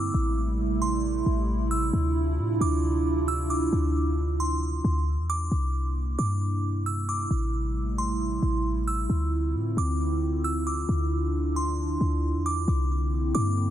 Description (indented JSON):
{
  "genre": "hip hop, atmospheric cloud-rap",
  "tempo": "134 BPM",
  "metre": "4/4",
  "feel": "half-time",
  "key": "D minor",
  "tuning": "A4 = 440 Hz",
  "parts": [
    { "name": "glassy synth bell", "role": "melody", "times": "0.0-13.6 s", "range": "C6 to E6", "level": "-33 LUFS", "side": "right 1 dB", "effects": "chorus, ping-pong delay" },
    { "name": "dark analog pad", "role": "sustained chords", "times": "0.0-13.7 s", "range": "C3 to F4", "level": "-29 LUFS", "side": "right 2 dB", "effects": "chorus" },
    { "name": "clean 808-style bass", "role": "bass", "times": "0.0-13.7 s", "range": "A1 to A2", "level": "-26 LUFS", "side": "equal", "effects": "none" }
  ],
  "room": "light reverb, digital ambience",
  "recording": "none",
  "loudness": "-24 LUFS",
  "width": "side -11 dB against mid",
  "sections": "0.0-5.5 A section; 5.5-12.7 B section; 12.7-13.7 A section",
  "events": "none",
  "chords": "0.1 Am7; 1.9 Dm9; 5.5 C9; 7.3 Am7; 9.1 Dm9; 12.7 C9"
}